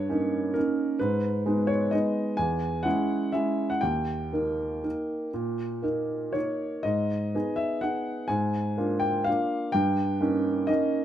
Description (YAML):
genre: classical, piano waltz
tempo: 116-136 BPM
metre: 3/4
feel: rubato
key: unclear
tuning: A4 = 441 Hz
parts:
  - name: warm upright piano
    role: solo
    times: 0.0-11.0 s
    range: D#2 to G#5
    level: -25 LUFS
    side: equal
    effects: none
room: light reverb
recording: close, detailed microphones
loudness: -25 LUFS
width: side -11 dB against mid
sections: 0.0-11.0 A section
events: none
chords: 0.0 D#7/G; 1.0 G#m; 2.4 C#m/E; 3.8 D#; 6.9 G#m; 8.3 A#7/G#; 9.7 D#7/G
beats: 0.10 0.56 | 1.01 1.46 1.93 | 2.39 2.85 3.35 | 3.84 4.33 4.85 | 5.34 5.84 6.35 | 6.86 7.35 7.84 | 8.31 8.78 9.27 | 9.74 10.21 10.69